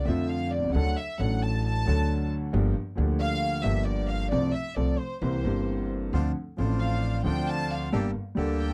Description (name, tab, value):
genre	tango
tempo	134 BPM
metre	4/4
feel	rubato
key	unclear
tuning	A4 = 440 Hz
part	warm studio violin section	second line	0.0-8.7 s	C5 to A5	-35 LUFS	equal	none
part	warm grand piano	accompaniment	0.0-8.7 s	G1 to A4	-31 LUFS	equal	none
part	upright bass	bass	0.0-8.7 s	G1 to F2	-31 LUFS	equal	none
part	bandoneon	stabs	6.1-8.7 s	Bb3 to C5	-38 LUFS	equal	none
room	little or no reverb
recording	dry, close 1970s-style studio recording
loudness	-27 LUFS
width	mono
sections	0.0-8.7 A section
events	violin section solo 0.0-8.7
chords	0.0 F6; 0.7 D; 2.5 Gm7; 4.3 F/C; 5.2 C7; 6.1 Dm7; 7.9 Gmadd9